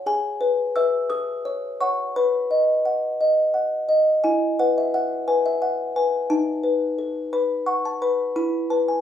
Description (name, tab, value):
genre	classical, lullaby for music box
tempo	58 BPM (dotted quarters)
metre	6/8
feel	straight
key	E major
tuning	A4 = 440 Hz
part	music box	solo	0.0-9.0 s	D#4 to E6	-20 LUFS	left 1 dB	none
room	moderate studio reverb, RT60 0.6 s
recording	rough home demo mix, studio ambience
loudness	-20 LUFS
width	side -9 dB against mid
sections	0.0-4.2 A section; 4.2-9.0 B section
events	none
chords	0.1 E/G#; 1.1 F#m/A; 2.1 B; 4.2 E5; 6.3 B7/D#; 8.4 E5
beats	| 0.06 1.10 | 2.15 3.19 | 4.24 5.27 | 6.31 7.34 | 8.37